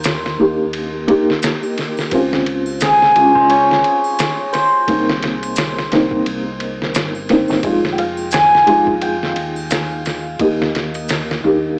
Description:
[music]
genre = trip hop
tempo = 87 BPM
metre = 4/4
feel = swing 58% on 16ths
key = F minor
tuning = A4 = 441 Hz
[part]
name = santur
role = melody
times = 0.0-11.8 s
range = Ab4 to Ab5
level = -18 LUFS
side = equal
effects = none
[part]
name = felt-muted upright piano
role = accompaniment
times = 0.0-11.8 s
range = Ab3 to G4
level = -20 LUFS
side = equal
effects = tremolo, cassette tape
[part]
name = deep dub fingered electric bass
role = bass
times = 0.0-11.8 s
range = F1 to Eb2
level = -31 LUFS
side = equal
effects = tube saturation
[part]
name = trip hop sampler-style drum kit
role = drums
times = 0.0-11.4 s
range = kick drum, ride cymbal, snare drum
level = -24 LUFS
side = equal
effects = studio reverb, cassette tape
[part]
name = maracas and triangle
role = percussion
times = 0.0-11.2 s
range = none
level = -37 LUFS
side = equal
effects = none
[sound]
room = moderate small room ambience, RT60 0.5 s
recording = home recording on cassette, small speaker sound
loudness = -16 LUFS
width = mono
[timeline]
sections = 0.0-11.8 A section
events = none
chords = 0.0 Eb; 2.1 Dbmaj7; 4.9 Cm7; 7.6 Fm7; 10.4 Eb

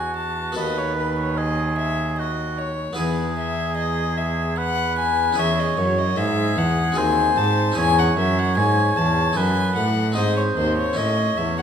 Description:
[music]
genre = classical, baroque-style sonata movement with continuo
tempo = 75 BPM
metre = 3/4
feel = straight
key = E major, C# minor from 5.4 s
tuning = A4 = 440 Hz
[part]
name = warm violin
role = melody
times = 0.0-11.6 s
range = B4 to A5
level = -24 LUFS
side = left 6 dB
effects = none
[part]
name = warm oboe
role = second line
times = 0.0-11.6 s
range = F#4 to C#5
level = -25 LUFS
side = right 5 dB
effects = none
[part]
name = harpsichord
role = accompaniment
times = 0.0-11.6 s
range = D#2 to A4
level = -26 LUFS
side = left 2 dB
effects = none
[part]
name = rich cello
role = bass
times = 0.0-11.6 s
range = D#2 to A2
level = -24 LUFS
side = right 2 dB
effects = none
[sound]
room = wet recital hall reverb, RT60 1.3 s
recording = none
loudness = -19 LUFS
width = side -8 dB against mid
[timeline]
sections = 0.0-11.6 A section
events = none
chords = 0.0 F#m7/E; 0.6 B7/D#; 3.0 E; 5.4 C#m/E; 7.0 G#7/D#; 7.8 C#m/E; 9.4 D#dim/F#; 10.2 G#; 11.0 A

